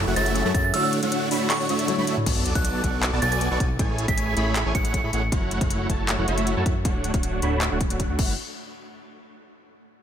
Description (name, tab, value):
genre	future bass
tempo	157 BPM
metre	4/4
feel	half-time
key	F# minor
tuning	A4 = 440 Hz
part	tine electric piano	accompaniment	0.0-2.3 s	D3 to E5	-30 LUFS	left 2 dB	medium stereo tremolo, sidechain pumping, ping-pong delay
part	dense compressed supersaw	riff	0.0-8.3 s	A3 to C#6	-26 LUFS	right 1 dB	sidechain pumping, low-pass filter
part	fat analog bass	bass	0.0-8.4 s	D1 to A2	-27 LUFS	equal	sidechain pumping
part	glassy synth bell	melody	0.2-5.3 s	C#6 to C#7	-29 LUFS	right 3 dB	chorus, sidechain pumping, ping-pong delay
part	trap drum kit	drums	0.2-8.3 s	crash cymbal, handclaps, hi-hat, toms	-29 LUFS	left 1 dB	studio reverb
part	electronic kick drum	drums	0.5-8.3 s	none	-25 LUFS	equal	overdrive, studio reverb
part	sub drop	sound effects	2.3-3.8 s	none	-34 LUFS	equal	none
room	light reverb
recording	none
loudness	-21 LUFS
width	side -9 dB against mid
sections	0.0-2.3 A section; 2.3-8.4 B section; 8.4-9.9 C section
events	drop 0.0-2.3; drum fill 1.9-2.3; impact 2.3-3.8; filter sweep on analog synth bass 2.3-8.4; filter sweep on supersaw synth 2.3-8.4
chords	0.0 F#m7; 0.7 Dmaj7; 2.3 Bm7; 3.8 Amaj7; 5.3 F#m7; 6.9 Dmaj7; 8.2 F#m7; 8.4 N.C.